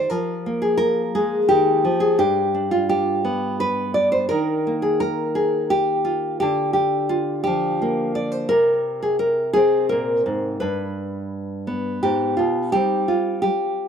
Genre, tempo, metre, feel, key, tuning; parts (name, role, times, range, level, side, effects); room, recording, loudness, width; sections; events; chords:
folk, solo fingerstyle acoustic guitar; 86 BPM; 3/4; straight; A4 = 441 Hz
nylon-string guitar; solo; 0.0-13.9 s; G2 to D5; -18 LUFS; equal; slapback echo
little or no reverb; recorded outdoors, with no room sound; -18 LUFS; side -7 dB against mid
0.0-12.7 A section; 12.7-13.9 B section
0.1 Fmadd9; 2.2 G; 4.3 Eb; 6.4 Bb/D; 8.5 Abadd9; 10.6 G; 12.7 Cm